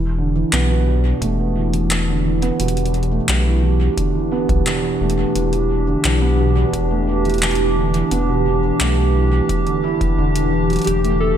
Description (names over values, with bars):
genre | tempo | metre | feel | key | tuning
IDM | 87 BPM | 4/4 | straight | E minor | A4 = 440 Hz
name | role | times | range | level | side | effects
warbly tape-like pad | sustained chords | 0.1-11.4 s | C#3 to G4 | -21 LUFS | right 1 dB | chorus, built-in reverb
warm sub bass | bass | 0.0-11.4 s | E1 to B1 | -19 LUFS | left 1 dB | tube saturation
felt-muted upright piano | arpeggios | 0.2-11.4 s | E2 to E4 | -21 LUFS | right 3 dB | low-pass filter, analog delay
booming analog drum machine | drums | 0.5-11.2 s | handclaps, hi-hat | -24 LUFS | left 1 dB | overdrive, analog delay
electronic kick drum | drums | 1.2-10.1 s | none | -24 LUFS | left 1 dB | overdrive
warbly lo-fi synth keys | melody | 10.9-11.4 s | G4 to A4 | -21 LUFS | left 2 dB | chorus, vintage 12-bit sampler grit
room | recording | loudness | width
light reverb, digital ambience | none | -15 LUFS | side -9 dB against mid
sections
0.0-11.4 A section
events
filter sweep on felt piano 0.0-11.4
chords
0.0 Em7; 10.9 A7/E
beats
0.53 1.22 1.91 | 2.60 3.29 3.98 4.67 | 5.36 6.04 6.74 7.42 | 8.11 8.80 9.49 10.18 | 10.87